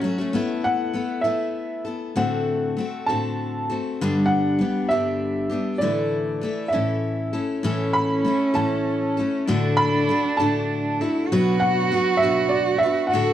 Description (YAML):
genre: acoustic folk duo or small band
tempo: 66 BPM (dotted quarters)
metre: 6/8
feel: straight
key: unclear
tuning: A4 = 439 Hz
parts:
  - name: warm cello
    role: second line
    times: 0.0-0.3, 7.6-13.3 s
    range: C#4 to F#4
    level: -24 LUFS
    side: right 3 dB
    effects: none
  - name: picked steel-string acoustic guitar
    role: accompaniment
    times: 0.0-13.3 s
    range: G2 to B4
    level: -23 LUFS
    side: left 2 dB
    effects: none
  - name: clear upright piano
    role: melody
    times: 0.6-13.3 s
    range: D5 to B5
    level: -24 LUFS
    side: right 1 dB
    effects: none
room: light reverb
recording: dark, warm production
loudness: -20 LUFS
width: side -11 dB against mid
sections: 0.3-13.3 A section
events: none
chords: 0.3 Asus2; 2.2 D7/A; 4.0 G; 5.8 Asus4; 6.7 A; 9.5 D/A; 11.3 Bm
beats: | 0.33 1.25 | 2.17 3.08 | 4.00 4.91 | 5.83 6.74 | 7.65 8.57 | 9.48 10.39 | 11.31 12.22 | 13.13